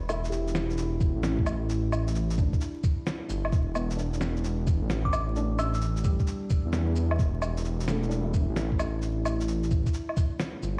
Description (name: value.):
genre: future garage.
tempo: 131 BPM.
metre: 4/4.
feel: swing 67% on 16ths.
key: E minor.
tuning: A4 = 439 Hz.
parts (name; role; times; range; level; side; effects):
felt-muted upright piano; accompaniment; 0.0-10.8 s; G3 to D5; -38 LUFS; equal; sidechain pumping, tape echo.
dark detuned saw bass; bass; 0.0-10.8 s; E1 to E2; -31 LUFS; equal; sidechain pumping.
electronic cabasa, woodblock, shaker and snare drum; drums; 0.1-10.7 s; none; -37 LUFS; equal; none.
electronic kick drum; drums; 1.0-10.3 s; none; -28 LUFS; equal; none.
glassy synth bell; melody; 5.1-5.8 s; D6 to E6; -38 LUFS; equal; chorus, analog delay.
room: little or no reverb.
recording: played on a big sound system in a bare room, stone room reverb, vinyl crackle.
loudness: -28 LUFS.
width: mono.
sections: 0.0-10.8 A section.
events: break 10.4-10.8.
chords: 0.0 Em7.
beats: 0.32 0.78 1.24 | 1.70 2.15 2.61 3.07 | 3.53 3.99 4.44 4.90 | 5.36 5.82 6.28 6.73 | 7.19 7.65 8.11 8.57 | 9.02 9.48 9.94 10.40.